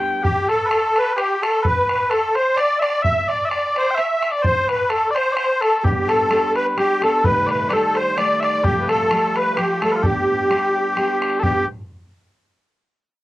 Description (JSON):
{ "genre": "celtic folk, Celtic waltz", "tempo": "129 BPM", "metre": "3/4", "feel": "straight", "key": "G mixolydian", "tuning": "A4 = 440 Hz", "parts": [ { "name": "mellow small bagpipes", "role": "second line", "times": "0.0-11.7 s", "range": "F4 to G5", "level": "-21 LUFS", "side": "left 2 dB", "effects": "none" }, { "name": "fingerpicked steel-string acoustic guitar", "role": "accompaniment", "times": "0.0-0.3, 5.8-11.6 s", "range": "F2 to G4", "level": "-25 LUFS", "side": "right 2 dB", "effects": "none" }, { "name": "musette accordion", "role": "melody", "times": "0.2-11.7 s", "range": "G4 to E5", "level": "-20 LUFS", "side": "equal", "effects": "none" }, { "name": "bodhran", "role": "percussion", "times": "0.2-11.7 s", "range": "none", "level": "-25 LUFS", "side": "equal", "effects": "none" } ], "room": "moderate booth ambience, RT60 0.2 s", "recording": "home recording on cassette, lossy compression artefacts", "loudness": "-16 LUFS", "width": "side -16 dB against mid", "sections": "0.2-11.4 A section; 11.4-12.8 B section", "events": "none", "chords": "0.2 N.C.; 5.8 G; 7.2 Cm6; 8.6 Fadd9; 10.0 G" }